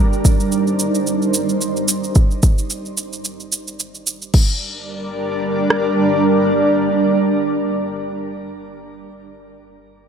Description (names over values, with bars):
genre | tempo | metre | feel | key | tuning
organic downtempo | 110 BPM | 4/4 | swing 57% on 16ths | G minor | A4 = 440 Hz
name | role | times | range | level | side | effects
granular cloud pad | sustained chords | 0.0-7.8 s | G3 to D5 | -18 LUFS | right 1 dB | built-in reverb, sidechain pumping, shimmer reverb
electronic shaker and crash cymbal | drums | 0.1-4.5 s | none | -22 LUFS | right 2 dB | none
deep house drum kit | drums | 0.2-5.8 s | kick drum, rim click | -13 LUFS | equal | none
room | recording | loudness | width
moderate lush hall reverb, RT60 2.5 s | faint mains hum | -16 LUFS | side -7 dB against mid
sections
0.0-4.3 A section; 4.3-8.7 B section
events
filter sweep on ambient pad 0.0-2.2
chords
0.0 Cmadd9; 4.3 Gm